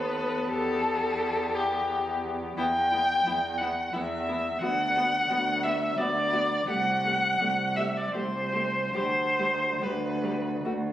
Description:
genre	classical, slow romantic movement for string quartet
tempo	68-89 BPM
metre	3/4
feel	rubato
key	G major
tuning	A4 = 444 Hz
part	muted violin	melody	0.0-10.7 s	E4 to A4	-37 LUFS	left 4 dB	none
part	muted violin	second line	0.0-10.7 s	G4 to G5	-26 LUFS	left 1 dB	none
part	muted viola	accompaniment	0.0-10.7 s	G3 to B3	-37 LUFS	equal	none
part	muted cello	bass	0.0-10.9 s	C2 to E2	-32 LUFS	right 2 dB	none
room	moderate concert hall reverb, RT60 1.8 s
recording	recorded on a phone in the room, studio reverb, compression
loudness	-25 LUFS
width	side -12 dB against mid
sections	0.0-10.9 A section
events	none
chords	0.0 B7/D#; 0.5 Em; 4.6 Bm/D; 6.7 Am/C; 9.0 G/D

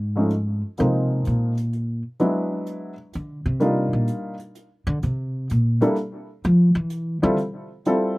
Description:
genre	jazz piano trio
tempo	127 BPM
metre	3/4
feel	swing 68% on 8ths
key	unclear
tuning	A4 = 441 Hz
part	upright bass	bass	0.0-7.3 s	G#2 to F3	-21 LUFS	equal	none
part	warm baby grand piano	melody	0.2-8.2 s	F3 to A4	-22 LUFS	equal	none
part	hi-hat	drums	0.3-8.0 s	none	-49 LUFS	right 3 dB	none
room	little or no reverb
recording	none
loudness	-20 LUFS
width	side -22 dB against mid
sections	0.0-8.2 A section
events	upright bass solo 0.0-8.2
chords	0.0 N.C.; 0.8 Bb9sus4; 2.2 E9; 3.6 Ebmaj9; 5.0 C7(no3); 6.4 Fmaj9

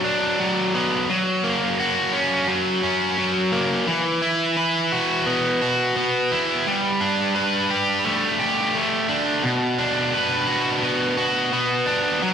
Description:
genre	rock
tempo	86 BPM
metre	4/4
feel	straight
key	B minor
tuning	A4 = 442 Hz
part	distorted electric guitar	solo	0.0-12.3 s	B2 to B4	-19 LUFS	equal	overdrive, slapback echo
room	wet concert hall reverb, RT60 2.3 s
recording	big arena sound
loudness	-19 LUFS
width	side -7 dB against mid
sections	0.0-12.3 A section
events	none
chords	0.0 Bm; 1.1 F#; 3.9 Esus2; 6.7 Gadd9; 9.4 Bm

